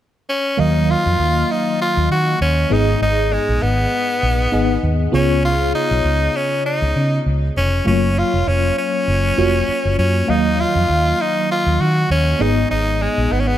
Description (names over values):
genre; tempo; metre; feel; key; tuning
1980s-style pop; 99 BPM; 4/4; swing 55% on 16ths; Eb minor; A4 = 440 Hz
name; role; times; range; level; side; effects
raspy tenor saxophone; melody; 0.3-13.6 s; Ab3 to Gb4; -19 LUFS; left 1 dB; tape echo
FM electric piano with auto-pan; accompaniment; 0.6-13.6 s; Ab2 to F5; -21 LUFS; equal; phaser
vintage muted fingered electric bass; bass; 0.6-13.5 s; F1 to Eb3; -18 LUFS; equal; none
room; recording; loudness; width
light reverb; none; -15 LUFS; side -12 dB against mid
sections
0.6-13.6 A section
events
none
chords
0.0 N.C.; 0.6 Ebmadd9; 2.7 Abm; 5.1 Db7; 7.9 Gbmaj7; 10.3 Ebmadd9; 12.4 Abm